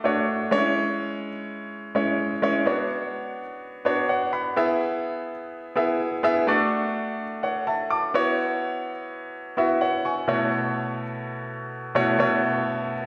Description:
pop; 126 BPM; 4/4; straight; A4 = 445 Hz
clear baby grand piano; solo; 0.0-13.1 s; B2 to D6; -25 LUFS; equal
wet scoring stage reverb, RT60 1.6 s; -25 LUFS; mono
0.0-10.3 A section; 10.3-13.1 B section
0.0 D; 0.5 C#m; 2.7 Bmadd9; 4.6 E; 6.5 D; 8.1 F#7sus4; 10.3 A6/B
0.29 | 0.76 1.24 1.71 2.19 | 2.67 3.14 3.62 4.09 | 4.57 5.05 5.52 6.00 | 6.48 6.95 7.43 7.91 | 8.38 8.86 9.33 9.81 | 10.29 10.76 11.24 11.71 | 12.19 12.67

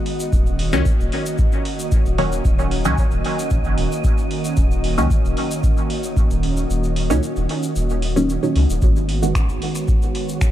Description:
dub techno; 113 BPM; 4/4; straight; A4 = 439 Hz
airy breathy pad; sustained chords; 0.0-10.5 s; D#3 to F#4; -25 LUFS; right 1 dB; chorus, sidechain pumping
wind-like tuned noise texture; texture; 0.0-10.5 s; C#5 to D#5; -33 LUFS; right 5 dB; built-in reverb, sidechain pumping
booming analog drum machine; drums; 0.1-10.5 s; finger snaps, hi-hat; -32 LUFS; right 1 dB; dub echo
egg shaker; percussion; 0.2-10.5 s; -35 LUFS; left 2 dB
soft dub sub bass; bass; 0.3-9.6 s; D#1 to C#2; -21 LUFS; equal; sidechain pumping
electronic kick drum; drums; 0.3-10.5 s; -18 LUFS; equal
filtered dub chord stab; stabs; 0.7-9.4 s; A#2 to F#4; -24 LUFS; equal; chorus, phaser, sidechain pumping, dub echo
digital ambience; dark, warm production; -17 LUFS; side -12 dB against mid
0.0-10.5 A section
kick drops out 6.7-8.8
0.3 D#m7; 8.8 G#m7
| 0.33 0.86 1.39 1.92 | 2.45 2.98 3.51 4.04 | 4.57 5.11 5.64 6.17 | 6.70 7.23 7.76 8.29 | 8.82 9.35 9.88 10.41

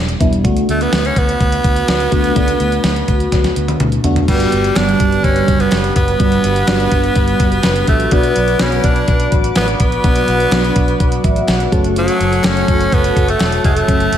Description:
1980s-style pop; 125 BPM; 4/4; straight; B minor; A4 = 435 Hz
FM electric piano with soft pad layer; accompaniment; 0.0-14.2 s; D3 to A5; -19 LUFS; left 1 dB; chorus, phaser, slapback echo
vintage muted fingered electric bass; bass; 0.0-14.2 s; E1 to D2; -19 LUFS; equal
clean 12-bit digital drum machine; drums; 0.1-14.2 s; crash cymbal, hi-hat, kick drum, snare drum, toms; -16 LUFS; equal
raspy tenor saxophone; melody; 0.7-14.2 s; F#3 to D4; -17 LUFS; equal; slapback echo
lush unison pad; sustained chords; 4.3-14.2 s; G3 to D6; -23 LUFS; right 3 dB; chorus
funky polysynth comp; stabs; 4.3-14.2 s; B3 to D5; -24 LUFS; right 1 dB; chorus, slapback echo, digital delay
group handclap; percussion; 4.8-13.5 s; barely audible
moderate lush hall reverb, RT60 1.8 s; big arena sound; -12 LUFS; side -10 dB against mid
0.0-4.3 A section; 4.3-14.2 B section
drum fill 3.3-4.3; FM electric piano fill 11.0-12.0
0.4 Bm7/D; 4.3 Gmaj7; 8.1 Bm; 11.7 F#m
| 0.45 0.93 1.41 1.89 | 2.37 2.85 3.33 3.81 | 4.29 4.76 5.25 5.72 | 6.21 6.68 7.17 7.64 | 8.12 8.61 9.09 9.56 | 10.04 10.53 11.01 11.48 | 11.96 12.45 12.93 13.40 | 13.88

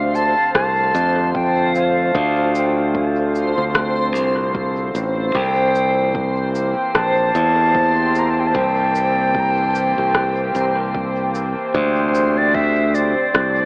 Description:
ambient dub; 75 BPM; 4/4; swing 58% on 16ths; D minor; A4 = 440 Hz
reedy concert flute; melody; 0.0-13.7 s; C5 to Bb5; -22 LUFS; equal; dub echo
warbly tape-like pad; sustained chords; 0.0-13.7 s; D3 to C5; -27 LUFS; equal; chorus, built-in reverb
modern bright fingered electric bass; bass; 0.0-13.7 s; A1 to F2; -23 LUFS; equal
backwards swelling texture; texture; 0.0-13.7 s; C5; -28 LUFS; equal; built-in reverb
electronic shaker and rim click; drums; 0.2-13.5 s; -24 LUFS; equal; dub echo
electronic kick drum; drums; 0.5-13.5 s; -32 LUFS; equal
moderate spring reverb, RT60 2.3 s; echo-heavy mix, AM radio sound; -18 LUFS; mono
0.0-13.7 A section
0.0 Dm7; 5.3 C7; 11.7 D7(no3)
0.55 1.35 | 2.15 2.95 3.75 4.55 | 5.35 6.15 6.95 7.75 | 8.55 9.35 10.15 10.95 | 11.75 12.55 13.35

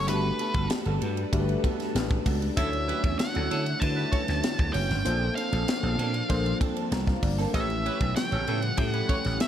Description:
polished 1980s jazz-funk pop; 97 BPM; 4/4; straight; D major; A4 = 441 Hz
octave-fuzz lead guitar; melody; 0.0-9.5 s; B4 to A5; -31 LUFS; equal; distortion
tine electric piano; accompaniment; 0.0-9.5 s; C#3 to Bb5; -32 LUFS; left 3 dB; analog chorus
soft string machine; sustained chords; 0.0-9.5 s; C#3 to C#5; -36 LUFS; left 1 dB; ensemble chorus
electric guitar at the edge of break-up; riff; 0.0-9.4 s; F#3 to C#5; -36 LUFS; right 7 dB; analog chorus
vintage slap bass; bass; 0.0-9.4 s; F#1 to D3; -29 LUFS; equal
tight funk drum kit; drums; 0.1-9.5 s; hi-hat, kick drum, ride cymbal, snare drum; -30 LUFS; equal; gated reverb
warm horn section; second line; 2.6-9.2 s; C#4 to C#5; -36 LUFS; equal
small room ambience; -24 LUFS; side -10 dB against mid
0.0-9.5 A section
tine electric piano fill 6.6-7.5
0.1 Gmaj9; 2.6 Dmaj9; 5.1 Bbmaj9; 7.5 A9
| 0.09 0.71 1.33 1.95 | 2.57 3.19 3.81 4.43 | 5.06 5.68 6.30 6.92 | 7.54 8.16 8.78 9.40

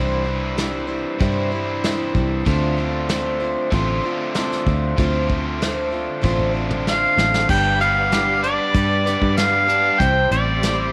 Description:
folk rock and heartland rock; 95 BPM; 4/4; straight; A4 = 439 Hz
picked plugged-in twelve-string acoustic guitar; accompaniment; 0.0-10.9 s; C3 to C5; -28 LUFS; equal
overdriven electric guitar; riff; 0.0-10.9 s; G2 to G4; -28 LUFS; equal
fingered electric bass; bass; 0.0-10.9 s; G1 to G2; -26 LUFS; equal
soft brush drum kit; drums; 0.6-10.8 s; crash cymbal, hi-hat, kick drum, snare drum, toms; -26 LUFS; equal
mellow harmonica; melody; 6.9-10.9 s; D5 to G5; -20 LUFS; equal
tonewheel organ; sustained chords; 7.5-10.9 s; G4 to C6; -36 LUFS; equal
light reverb, small room ambience; -20 LUFS; mono
0.0-7.5 A section; 7.5-10.9 B section
drum fill 6.2-7.5
0.0 Cadd9; 2.5 Dm7; 7.5 G; 10.0 C
0.57 1.20 1.83 | 2.46 3.09 3.72 4.35 | 4.98 5.61 6.24 6.86 | 7.49 8.12 8.75 9.38 | 10.00 10.63

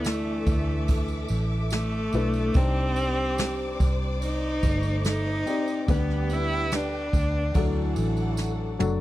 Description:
pop ballad; 72 BPM; 4/4; straight; A4 = 440 Hz
clear cello; melody; 0.0-8.0 s; A3 to E4; -30 LUFS; equal
dark French horn section; second line; 0.0-8.8 s; E3 to A4; -35 LUFS; right 2 dB
felt-muted upright piano; accompaniment; 0.0-9.0 s; C3 to D5; -32 LUFS; left 5 dB
warm studio string section; sustained chords; 0.0-9.0 s; A4 to D6; -37 LUFS; left 2 dB
vintage muted fingered electric bass; bass; 0.0-9.0 s; F#1 to D2; -27 LUFS; equal
tambourine; percussion; 0.0-9.0 s; -46 LUFS; right 8 dB
jazz brush drum kit; drums; 0.1-9.0 s; kick drum, ride cymbal, snare drum, toms; -26 LUFS; right 1 dB
little or no reverb; dry, close 1970s-style studio recording; -23 LUFS; side -15 dB against mid
0.0-9.0 A section
drum fill 8.4-9.0
0.0 Dsus2; 2.5 Cmadd9; 5.9 G/D; 7.5 D
0.05 0.88 1.72 | 2.55 3.38 4.22 5.05 | 5.88 6.72 7.55 8.38

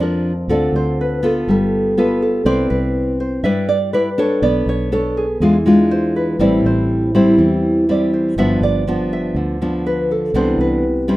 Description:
bossa nova; 122 BPM; 4/4; straight; C major; A4 = 440 Hz
nylon-string guitar; melody; 0.0-11.2 s; Ab4 to E5; -21 LUFS; right 1 dB
nylon-string guitar; accompaniment; 0.0-11.2 s; F2 to D5; -16 LUFS; equal
fingered electric bass; bass; 0.0-11.2 s; G1 to G2; -24 LUFS; equal
moderate studio reverb, RT60 0.6 s; rough home demo mix; -14 LUFS; side -17 dB against mid
0.0-11.2 A section
0.5 Dm7; 1.5 G9; 2.5 Cmaj9; 4.4 Bm9; 5.4 E7b9; 6.4 Am7; 8.4 G7; 10.3 Cmaj9
0.00 | 0.49 0.98 1.48 1.97 | 2.46 2.95 3.44 3.94 | 4.43 4.92 5.41 5.91 | 6.40 6.89 7.38 7.88 | 8.37 8.86 9.35 9.85 | 10.34 10.83

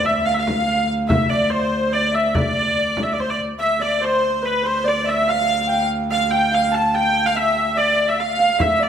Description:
medieval dance; 144 BPM; 3/4; straight; D minor; A4 = 440 Hz
clear hurdy-gurdy; melody; 0.0-8.9 s; B4 to A5; -19 LUFS; equal
Celtic harp; second line; 0.0-8.9 s; B4 to A5; -24 LUFS; right 6 dB
breathy mellow tenor recorder; second line; 0.0-8.9 s; B4 to A5; -25 LUFS; left 4 dB
rich viola da gamba; drone; 0.0-8.9 s; D2; -26 LUFS; equal
frame drum; percussion; 0.1-3.5, 8.6-8.9 s; -23 LUFS; left 1 dB
wet large studio reverb, RT60 1.1 s; band playing live in one room; -16 LUFS; side -8 dB against mid
0.0-3.6 A section; 3.6-8.9 A section
0.27 0.68 | 1.10 1.51 1.93 | 2.35 2.77 3.18 | 3.60 4.01 4.43 | 4.84 5.26 5.68 | 6.09 6.51 6.92 | 7.34 7.75 8.17 | 8.59

